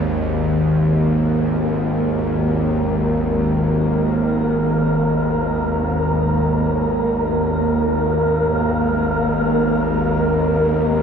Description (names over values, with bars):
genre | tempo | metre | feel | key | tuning
dark ambient drone | free time | none | none | unclear | A4 = 440 Hz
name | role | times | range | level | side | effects
bowed-like drone | drone | 0.0-11.0 s | G#1 to D#2 | -18 LUFS | equal | built-in reverb
wind-like tuned noise texture | texture | 0.7-11.0 s | A#3 to A#4 | -21 LUFS | equal | built-in reverb, shimmer reverb
room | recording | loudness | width
wet cathedral reverb, RT60 6.7 s | in a vast, echoing space | -16 LUFS | side -7 dB against mid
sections
0.1-11.0 A section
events
none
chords
0.1 G#sus2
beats
free time